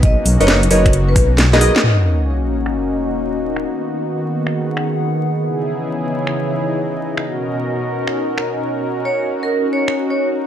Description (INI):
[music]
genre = UK garage, two-step garage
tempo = 133 BPM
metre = 4/4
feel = swing 67% on 16ths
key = unclear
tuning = A4 = 439 Hz
[part]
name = vibraphone with medium mallets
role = melody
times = 0.0-1.7, 9.1-10.2 s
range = G#4 to D#5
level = -20 LUFS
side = equal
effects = ping-pong delay
[part]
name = warm analog pad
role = sustained chords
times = 0.0-10.5 s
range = B2 to A#4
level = -22 LUFS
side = equal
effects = chorus, tremolo, sidechain pumping
[part]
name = dark detuned saw bass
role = bass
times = 0.0-1.7 s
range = F#1 to B1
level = -14 LUFS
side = equal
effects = none
[part]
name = electronic kick drum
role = drums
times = 0.0-1.3 s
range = none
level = -14 LUFS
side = equal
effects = overdrive, small room ambience
[part]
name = garage drum kit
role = drums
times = 0.0-9.9 s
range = finger snaps, hi-hat, snare drum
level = -19 LUFS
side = equal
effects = low-pass filter on snare, small room ambience, low-pass filter on hats
[part]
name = deep mellow chord stab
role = stabs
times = 0.4-1.8 s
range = D#4 to D#5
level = -18 LUFS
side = equal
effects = chorus, ping-pong delay
[part]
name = sub drop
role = sound effects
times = 1.8-3.6 s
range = none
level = -19 LUFS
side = equal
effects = none
[part]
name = warbly tape-like pad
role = texture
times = 2.2-10.5 s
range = D#3 to F#5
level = -22 LUFS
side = equal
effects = chorus, built-in reverb, sidechain pumping
[sound]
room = moderate digital room reverb, RT60 1.1 s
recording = vinyl crackle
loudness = -15 LUFS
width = side -10 dB against mid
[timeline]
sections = 0.0-1.8 A section; 1.8-10.5 B section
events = drum fill 1.5-1.8; band accent 1.7; impact 1.8-3.6; filter sweep on drum 1.8-10.5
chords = 0.0 Bmaj7; 1.8 D#m7; 3.6 G#m7/D#; 5.4 C#m9; 7.2 Bmaj7; 9.1 D#m7